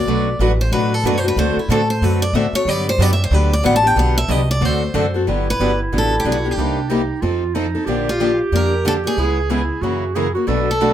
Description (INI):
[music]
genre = acoustic string swing (jazz manouche)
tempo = 184 BPM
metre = 4/4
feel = swing 60% on 8ths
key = G major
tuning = A4 = 440 Hz
[part]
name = picked steel-string acoustic guitar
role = melody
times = 0.0-10.9 s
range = E4 to A5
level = -21 LUFS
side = equal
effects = none
[part]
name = picked steel-string acoustic guitar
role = accompaniment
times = 0.0-10.9 s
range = B2 to A4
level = -22 LUFS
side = left 4 dB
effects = none
[part]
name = upright bass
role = bass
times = 0.0-10.9 s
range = G1 to A2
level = -20 LUFS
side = equal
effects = none
[part]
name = picked steel-string acoustic guitar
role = accompaniment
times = 0.1-10.9 s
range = B2 to B4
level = -24 LUFS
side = right 4 dB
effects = none
[part]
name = mellow clarinet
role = second line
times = 5.3-10.9 s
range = D4 to A4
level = -23 LUFS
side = right 4 dB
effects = none
[sound]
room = moderate club reverb, RT60 0.6 s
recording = none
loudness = -15 LUFS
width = side -11 dB against mid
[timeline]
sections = 0.0-5.3 A section; 5.3-10.9 B section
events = steel-string acoustic guitar solo 0.0-5.3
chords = 0.1 Bm7; 1.4 D7; 2.7 Gmaj7; 4.6 D7; 5.3 Gmaj7; 6.6 Cm7; 7.2 F7; 7.9 Bb6; 9.2 C#m7; 9.8 F#7